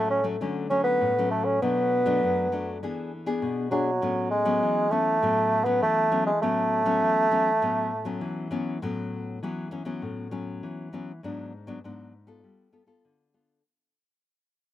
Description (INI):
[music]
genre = samba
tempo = 100 BPM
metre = 4/4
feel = straight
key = A major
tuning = A4 = 439 Hz
[part]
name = mellow bassoon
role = melody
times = 0.0-8.2 s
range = F#3 to C#4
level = -23 LUFS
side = right 1 dB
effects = slapback echo
[part]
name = nylon-string guitar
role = accompaniment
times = 0.0-13.6 s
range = F#2 to A4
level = -29 LUFS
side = left 3 dB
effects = slapback echo
[sound]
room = light reverb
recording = recorded outdoors, with no room sound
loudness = -23 LUFS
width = side -13 dB against mid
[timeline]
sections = 0.0-8.8 A section; 8.8-13.6 B section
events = fade-out 8.8-13.6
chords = 0.0 Dmaj7; 1.6 Bm7; 2.8 E7; 4.0 A69; 11.2 G#m7b5; 12.4 G9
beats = 0.41 1.01 | 1.62 2.22 2.82 3.42 | 4.02 4.62 5.22 5.83 | 6.43 7.03 7.63 8.23 | 8.83 9.43 10.03 10.63 | 11.23 11.84 12.44 13.04